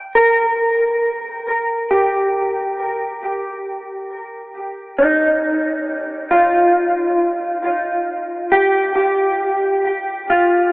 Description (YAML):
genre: ambient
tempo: 68 BPM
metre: 4/4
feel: straight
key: unclear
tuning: A4 = 439 Hz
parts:
  - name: mellow electric guitar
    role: solo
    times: 0.2-10.7 s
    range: Eb4 to Bb4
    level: -15 LUFS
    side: equal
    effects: analog chorus, diffuse ambient delay
room: wet huge ambient reverb, RT60 7.3 s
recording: worn, warbling old tape, cassette tape, warbly pitch drift, telephone sound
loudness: -15 LUFS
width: side -24 dB against mid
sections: 0.2-10.7 A section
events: none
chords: none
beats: | 0.16 1.04 1.92 2.81 | 3.69 4.57 5.45 6.34 | 7.22 8.10 8.98 9.87